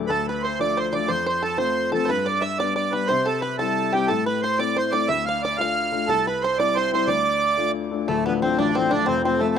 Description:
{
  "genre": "celtic folk, Celtic jig",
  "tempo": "120 BPM (dotted quarters)",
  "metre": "6/8",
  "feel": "straight",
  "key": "D dorian",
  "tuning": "A4 = 438 Hz",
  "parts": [
    { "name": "clear upright piano", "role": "accompaniment", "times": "0.0-9.6 s", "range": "D1 to F4", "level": "-25 LUFS", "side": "left 9 dB", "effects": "none" },
    { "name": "accordion", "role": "melody", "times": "0.1-9.6 s", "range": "A3 to F5", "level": "-22 LUFS", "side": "right 4 dB", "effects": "none" },
    { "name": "bluegrass banjo", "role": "second line", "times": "0.1-9.6 s", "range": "A3 to F5", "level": "-28 LUFS", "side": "right 2 dB", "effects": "none" }
  ],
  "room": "light reverb, studio reverb",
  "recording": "dry, close 1970s-style studio recording",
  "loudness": "-20 LUFS",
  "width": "side -8 dB against mid",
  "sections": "0.1-8.1 A section; 8.1-9.6 A section",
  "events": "none",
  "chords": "0.1 Dm; 1.1 F; 2.1 G; 3.1 C; 4.1 Am; 5.1 Dm; 6.1 C; 7.1 Dm; 9.1 F"
}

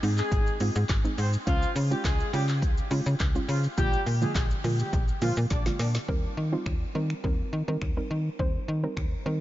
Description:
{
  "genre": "dance-pop",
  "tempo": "104 BPM",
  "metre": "4/4",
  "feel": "straight",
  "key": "Eb major from 6.1 s",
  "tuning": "A4 = 439 Hz",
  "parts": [
    { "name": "soft round pluck", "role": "accompaniment", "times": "0.0-9.4 s", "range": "D3 to C5", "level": "-33 LUFS", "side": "right 2 dB", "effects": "chorus, sidechain pumping" },
    { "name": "slap-like FM bass", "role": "bass", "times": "0.0-9.4 s", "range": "Ab1 to Eb3", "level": "-27 LUFS", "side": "equal", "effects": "sidechain pumping" },
    { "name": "deep house drum kit", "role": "drums", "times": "0.0-9.1 s", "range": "finger snaps, handclaps, hi-hat, kick drum, shaker, snare drum", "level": "-30 LUFS", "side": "equal", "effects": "none" },
    { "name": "mellow horn section", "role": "melody", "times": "0.2-5.9 s", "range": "F3 to D5", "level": "-34 LUFS", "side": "left 1 dB", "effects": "sidechain pumping, tape echo" }
  ],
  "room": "light reverb",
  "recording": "nothing above 7.5 kHz",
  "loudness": "-25 LUFS",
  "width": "side -14 dB against mid",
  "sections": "0.0-6.1 A section; 6.1-9.4 B section",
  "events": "drop 0.0-6.1; drum fill 5.5-6.1",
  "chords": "0.0 Ab; 1.5 Db; 3.8 Bb7; 6.1 Eb6"
}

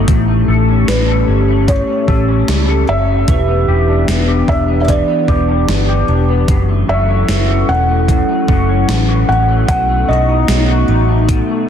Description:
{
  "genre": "dream pop",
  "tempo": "75 BPM",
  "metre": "4/4",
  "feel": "straight",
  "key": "E dorian",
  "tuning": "A4 = 441 Hz",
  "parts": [
    { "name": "warbly tape-like pad", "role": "sustained chords", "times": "0.0-11.7 s", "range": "E3 to A4", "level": "-18 LUFS", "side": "equal", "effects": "chorus, built-in reverb" },
    { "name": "electric guitar through a small old amp", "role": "arpeggios", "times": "0.0-11.7 s", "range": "F#2 to A4", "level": "-19 LUFS", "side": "left 4 dB", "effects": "analog chorus, tape echo" },
    { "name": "vintage muted fingered electric bass", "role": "bass", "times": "0.0-11.4 s", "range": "E1 to C#2", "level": "-14 LUFS", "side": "equal", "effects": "none" },
    { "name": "gated 80s digital drum machine", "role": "drums", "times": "0.1-11.5 s", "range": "hi-hat, kick drum, snare drum", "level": "-16 LUFS", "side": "equal", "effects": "gated reverb, gated reverb snare, overdrive" },
    { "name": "felt-muted upright piano", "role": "melody", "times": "0.9-10.8 s", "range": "B4 to F#5", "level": "-18 LUFS", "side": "right 1 dB", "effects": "tape echo" }
  ],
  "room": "light reverb",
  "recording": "dense, heavily limited modern master",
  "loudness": "-11 LUFS",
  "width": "side -8 dB against mid",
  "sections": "0.0-11.7 A section",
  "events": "none",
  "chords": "0.1 A7; 3.3 Em7; 6.5 F#m7; 9.7 B7"
}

